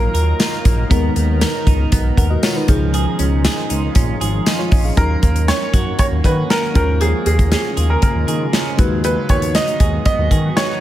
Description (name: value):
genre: 1980s-style pop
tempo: 118 BPM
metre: 4/4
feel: straight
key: Eb minor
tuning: A4 = 440 Hz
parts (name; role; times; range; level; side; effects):
- bright baby grand piano; melody; 0.0-0.6, 5.0-10.8 s; Ab4 to Eb5; -21 LUFS; right 1 dB; tape echo
- mellow FM electric piano; accompaniment; 0.0-10.8 s; F3 to Gb5; -25 LUFS; left 3 dB; chorus
- shimmering ambient pad; sustained chords; 0.0-10.8 s; Cb3 to Bb4; -26 LUFS; right 1 dB; chorus, built-in reverb
- direct-recorded clean electric guitar; riff; 0.0-10.8 s; F3 to Bb4; -26 LUFS; right 7 dB; analog chorus, tape echo
- smooth synth bass; bass; 0.0-10.5 s; Ab1 to Eb3; -18 LUFS; equal; none
- modern studio drum kit; drums; 0.1-10.7 s; hi-hat, kick drum, snare drum, tambourine; -17 LUFS; equal; none
room: small room ambience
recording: none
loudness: -14 LUFS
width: side -13 dB against mid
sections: 0.0-5.0 A section; 5.0-10.8 B section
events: none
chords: 0.0 Ebmadd9; 0.9 Abmadd9; 2.7 Dbadd9; 5.0 Ebm7; 6.8 Bbm7/Eb; 8.8 Abm7/Eb